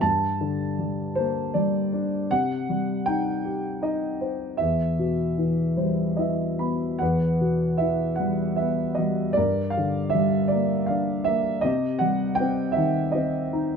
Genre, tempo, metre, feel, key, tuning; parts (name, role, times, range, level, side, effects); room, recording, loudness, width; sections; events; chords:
classical, lyrical solo piano; 78 BPM; 3/4; rubato; E harmonic minor; A4 = 440 Hz
dark concert grand piano; solo; 0.0-13.8 s; E2 to B5; -22 LUFS; equal
light reverb; minimal, uncompressed stereo recording; -22 LUFS; side -6 dB against mid
0.0-7.0 A section; 7.0-13.8 B section
grand piano fill 5.8-7.0
0.0 Gm; 2.3 Cm; 4.6 Em; 9.4 Gm; 11.6 Cm